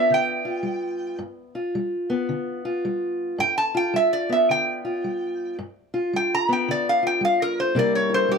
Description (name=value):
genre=acoustic country blues, solo or duo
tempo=110 BPM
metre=4/4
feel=swing 64% on 8ths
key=G mixolydian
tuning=A4 = 440 Hz
part: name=metal-body resonator slide guitar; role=melody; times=0.0-8.4 s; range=G4 to Bb5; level=-21 LUFS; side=right 1 dB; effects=none
part: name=fingerpicked steel-string acoustic guitar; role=accompaniment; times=0.0-8.4 s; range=G2 to Bb4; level=-25 LUFS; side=left 2 dB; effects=none
room=light reverb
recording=none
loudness=-21 LUFS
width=side -5 dB against mid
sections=0.0-8.4 A section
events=resonator guitar played with a steel bar solo 0.0-8.4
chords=0.0 G7; 7.8 C7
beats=0.11 0.66 | 1.21 1.75 2.30 2.85 | 3.40 3.94 4.49 5.04 | 5.58 6.13 6.67 7.22 | 7.76 8.31